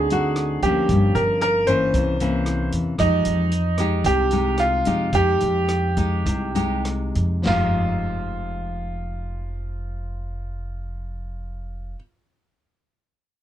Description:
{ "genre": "bossa nova", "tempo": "97-114 BPM", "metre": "4/4", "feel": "straight", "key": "F minor", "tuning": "A4 = 440 Hz", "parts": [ { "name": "clear baby grand piano", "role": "melody", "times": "0.0-11.9 s", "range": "Eb4 to C5", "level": "-22 LUFS", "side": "right 2 dB", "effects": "none" }, { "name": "nylon-string guitar", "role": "accompaniment", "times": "0.0-12.0 s", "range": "G2 to G4", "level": "-24 LUFS", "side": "left 3 dB", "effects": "none" }, { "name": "upright bass", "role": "bass", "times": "0.0-11.9 s", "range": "F1 to F2", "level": "-25 LUFS", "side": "equal", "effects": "none" }, { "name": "open jazz drum kit", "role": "drums", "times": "0.1-7.6 s", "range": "crash cymbal, hi-hat, kick drum, rim click, snare drum, toms", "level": "-30 LUFS", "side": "equal", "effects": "none" } ], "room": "light reverb", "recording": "dark, warm production", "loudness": "-19 LUFS", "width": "side -11 dB against mid", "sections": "0.0-7.5 A section; 7.5-12.4 B section", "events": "slowing down 3.0-7.5", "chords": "0.0 D7b9; 0.9 Gm7b5; 1.9 C7b9; 3.0 Fm9", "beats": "0.37 | 0.90 1.42 1.94 2.47 | 2.99 3.52 4.05 4.58 | 5.13 5.69 6.26 6.85 | 7.46 8.08 8.70 9.31 | 9.93 10.55 11.17 11.79" }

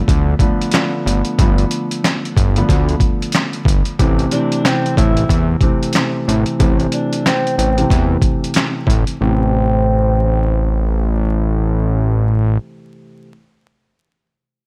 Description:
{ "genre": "hip hop, boom-bap hip-hop", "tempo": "92 BPM", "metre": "4/4", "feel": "swing 63% on 16ths", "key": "A minor", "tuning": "A4 = 437 Hz", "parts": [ { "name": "dark grand piano", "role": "accompaniment", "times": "0.0-13.3 s", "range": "C3 to C4", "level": "-23 LUFS", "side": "equal", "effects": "cassette tape, high-pass filter, low-pass filter" }, { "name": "fat analog bass", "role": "bass", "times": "0.0-12.6 s", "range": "G1 to E2", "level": "-18 LUFS", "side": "equal", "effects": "none" }, { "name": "boom bap sampler-style drum kit", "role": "drums", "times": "0.1-9.2 s", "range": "handclaps, hi-hat, kick drum, snare drum", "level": "-19 LUFS", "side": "equal", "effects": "none" }, { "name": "breathy tenor saxophone", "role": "melody", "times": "4.3-11.1 s", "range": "C4 to E4", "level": "-24 LUFS", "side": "equal", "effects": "high-pass filter, low-pass filter, delay" } ], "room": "small room ambience", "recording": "vinyl crackle", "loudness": "-16 LUFS", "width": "mono", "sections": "0.0-4.0 A section; 4.0-9.2 B section; 9.2-11.8 C section", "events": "filter sweep 4.0-9.2", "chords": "0.0 G7; 4.0 Am", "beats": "0.08 0.73 | 1.39 2.04 2.69 3.34 | 3.99 4.65 5.30 5.95 | 6.60 7.25 7.91 8.56 | 9.21 9.86 10.52 11.17" }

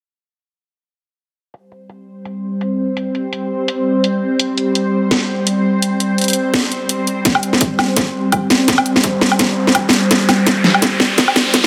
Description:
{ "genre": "half-time drum and bass", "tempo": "168 BPM", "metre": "4/4", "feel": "swing 57% on 16ths, half-time", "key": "unclear", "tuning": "A4 = 440 Hz", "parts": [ { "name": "bowed-like drone", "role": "sustained chords", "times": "2.2-11.7 s", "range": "G3 to C5", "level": "-20 LUFS", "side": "equal", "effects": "built-in reverb, phaser, sidechain pumping" }, { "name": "drum and bass drum kit", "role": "drums", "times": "1.5-11.7 s", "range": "hi-hat, snare drum, woodblock", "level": "-17 LUFS", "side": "equal", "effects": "overdrive, low-pass filter on hats, studio reverb, low-pass filter on snare, low-pass filter on perc" }, { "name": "electronic kick drum", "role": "drums", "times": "7.3-11.6 s", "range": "none", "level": "-24 LUFS", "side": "equal", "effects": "high-pass filter on kick, studio reverb" }, { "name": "riser", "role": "sound effects", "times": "9.0-11.7 s", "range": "none", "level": "-24 LUFS", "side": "equal", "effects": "none" } ], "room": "moderate lush hall reverb, RT60 2.5 s", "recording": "dense, heavily limited modern master, high-pass filter", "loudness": "-16 LUFS", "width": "mono", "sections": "1.5-7.3 A section; 7.3-11.7 B section", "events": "filter sweep on drum 1.5-7.3; filter sweep on synth drone 1.5-7.3; build-up 7.3-11.7; drum fill 7.3-11.7; riser 9.0-11.7", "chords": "1.5 C5", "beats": "| 1.54 1.90 2.26 2.61 | 2.97 3.33 3.68 4.04 | 4.40 4.76 5.11 5.47 | 5.83 6.18 6.54 6.90 | 7.26 7.61 7.97 8.33 | 8.68 9.04 9.40 9.76 | 10.11 10.47 10.83 11.18 | 11.54" }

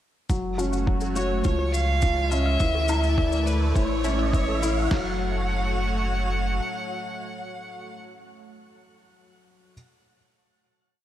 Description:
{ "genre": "piano and strings electronica", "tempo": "104 BPM", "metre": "4/4", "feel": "straight", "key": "F# minor", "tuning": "A4 = 436 Hz", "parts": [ { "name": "lush unison pad", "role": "sustained chords", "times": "0.3-8.0 s", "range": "G#3 to D5", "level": "-33 LUFS", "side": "right 1 dB", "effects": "chorus, phaser, sidechain pumping, shimmer reverb" }, { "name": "felt-muted upright piano", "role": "riff", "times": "0.3-9.7 s", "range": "E3 to F#4", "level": "-30 LUFS", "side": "left 2 dB", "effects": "tape echo, shimmer reverb" }, { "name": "warm sub bass", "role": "bass", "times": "0.3-6.6 s", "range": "F#1 to D2", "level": "-26 LUFS", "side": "equal", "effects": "sidechain pumping" }, { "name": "lo-fi sampler-style drum kit", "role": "drums", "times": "0.3-5.0 s", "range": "crash cymbal, kick drum, snare drum", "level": "-25 LUFS", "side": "equal", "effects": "overdrive" }, { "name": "shaker and woodblock", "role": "drums", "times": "0.3-4.7 s", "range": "none", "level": "-37 LUFS", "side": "left 2 dB", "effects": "high-pass filter on perc, high-pass filter on room" }, { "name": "riser", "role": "sound effects", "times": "1.9-4.9 s", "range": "none", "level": "-36 LUFS", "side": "equal", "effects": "none" }, { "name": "wide unison pluck", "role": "arpeggios", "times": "0.6-5.2 s", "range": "E4 to F#6", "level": "-37 LUFS", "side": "left 2 dB", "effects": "none" }, { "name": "rich violin", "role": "melody", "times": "1.1-8.0 s", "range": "B4 to F#5", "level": "-30 LUFS", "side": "right 1 dB", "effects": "shimmer reverb" } ], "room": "moderate recital hall reverb, RT60 1.4 s, small room ambience", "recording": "none", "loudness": "-22 LUFS", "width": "side -12 dB against mid", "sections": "0.3-4.9 build; 4.9-7.2 final chord", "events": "build-up 0.3-4.9; filter sweep on synth arpeggio sound 0.3-4.9; riser 1.9-4.9", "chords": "0.3 F#m; 1.5 C#; 2.6 Dsus2; 3.8 A; 4.9 F#m", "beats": "| 0.30 0.88 1.45 2.03 | 2.61 3.18 3.76 4.34 | 4.91 5.49 6.07 6.64" }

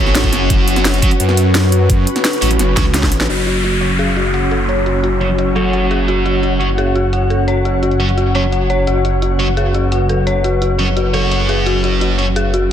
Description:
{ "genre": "dark technical drum and bass", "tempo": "172 BPM", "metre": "4/4", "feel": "straight", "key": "unclear", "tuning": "A4 = 440 Hz", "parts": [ { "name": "dark analog pad", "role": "sustained chords", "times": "0.0-12.7 s", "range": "C#4 to C#5", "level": "-22 LUFS", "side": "equal", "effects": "chorus, sidechain pumping" }, { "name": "sludgy distorted guitar", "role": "stabs", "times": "0.0-12.3 s", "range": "F#3 to C#5", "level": "-20 LUFS", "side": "right 2 dB", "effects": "overdrive, low-pass filter, tape echo" }, { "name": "phased detuned saw bass", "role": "bass", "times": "0.0-12.7 s", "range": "F#1 to F#2", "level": "-16 LUFS", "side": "equal", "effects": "phaser, overdrive" }, { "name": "ethereal airy pad", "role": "texture", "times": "0.0-12.7 s", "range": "F#4 to B5", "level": "-22 LUFS", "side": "left 1 dB", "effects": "ensemble chorus, built-in reverb, sidechain pumping" }, { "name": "drum and bass drum kit", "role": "drums", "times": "0.1-12.6 s", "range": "crash cymbal, hi-hat, snare drum", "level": "-20 LUFS", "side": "equal", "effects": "overdrive, low-pass filter on snare, low-pass filter on hats, low-pass filter on cymbals, low-pass filter on room" }, { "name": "electronic kick drum", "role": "drums", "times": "0.2-3.1 s", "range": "none", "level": "-15 LUFS", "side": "equal", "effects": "overdrive" }, { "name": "dark detuned synth bell", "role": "arpeggios", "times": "3.3-12.7 s", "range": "F#4 to F#5", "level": "-20 LUFS", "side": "left 3 dB", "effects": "chorus, sidechain pumping, low-pass filter, tape echo" }, { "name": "downlifter and riser", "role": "sound effects", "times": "3.3-6.1, 12.5-12.7 s", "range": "none", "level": "-23 LUFS", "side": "equal", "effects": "none" } ], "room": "light reverb", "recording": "dense, heavily limited modern master", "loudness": "-12 LUFS", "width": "side -10 dB against mid", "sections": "0.0-3.3 A section; 3.3-12.7 B section", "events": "drop 0.0-3.3; drum fill 2.8-3.3; band accent 3.2; filter sweep on synth bell 3.3-12.7; filter sweep on distorted electric guitar 3.3-12.7", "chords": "0.0 F#5", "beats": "0.15 | 0.50 0.85 1.20 1.55 | 1.90 2.25 2.59 2.94 | 3.29 3.64 3.99 4.34 | 4.69 5.04 5.38 5.73 | 6.08 6.43 6.78 7.13 | 7.48 7.83 8.18 8.52 | 8.87 9.22 9.57 9.92 | 10.27 10.62 10.97 11.31 | 11.66 12.01 12.36 12.71" }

